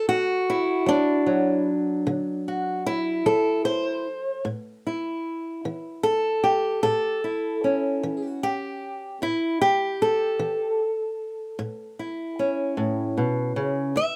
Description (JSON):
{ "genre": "acoustic country blues, solo or duo", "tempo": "50 BPM (dotted quarters)", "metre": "12/8", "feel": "straight", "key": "A mixolydian", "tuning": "A4 = 439 Hz", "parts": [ { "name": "fingerpicked old ladder-braced acoustic guitar", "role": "solo", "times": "0.0-14.2 s", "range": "A2 to E5", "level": "-25 LUFS", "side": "equal", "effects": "none" } ], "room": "light reverb", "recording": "close, detailed microphones", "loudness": "-25 LUFS", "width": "mono", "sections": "0.0-14.2 A section", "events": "none", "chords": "0.0 D7; 4.5 A7" }